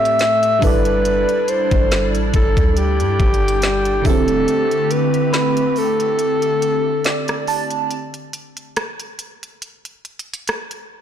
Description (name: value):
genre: contemporary R&B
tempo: 70 BPM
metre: 4/4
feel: swing 54% on 16ths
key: unclear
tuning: A4 = 440 Hz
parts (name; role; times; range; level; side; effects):
- breathy alto saxophone; melody; 0.0-7.5 s; G4 to E5; -18 LUFS; left 1 dB; none
- FM electric piano with soft pad layer; accompaniment; 0.0-7.9 s; A2 to A5; -22 LUFS; right 6 dB; chorus
- hollow soft pad; sustained chords; 0.0-7.9 s; D3 to D5; -24 LUFS; left 3 dB; ensemble chorus, sidechain pumping
- trap drum kit; drums; 0.1-10.9 s; hi-hat, kick drum, rim click, snare drum; -20 LUFS; left 1 dB; none
- soft 808-style bass; bass; 0.6-4.5 s; D1 to G2; -21 LUFS; left 1 dB; none
- worn celesta; texture; 5.3-7.3 s; B5; -29 LUFS; right 3 dB; tape echo
room: light reverb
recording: blown-out, overdriven recording, overdrive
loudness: -15 LUFS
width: side -9 dB against mid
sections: 0.0-7.9 A section; 7.9-11.0 B section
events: kick muted 4.5-7.9; FM electric piano fill 6.6-7.9; break 7.9-11.0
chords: 0.0 Am7; 0.6 G6; 4.1 D7sus4; 7.9 N.C.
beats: 0.19 | 1.05 1.91 2.77 3.62 | 4.48 5.34 6.19 7.05 | 7.91 8.77 9.62 10.48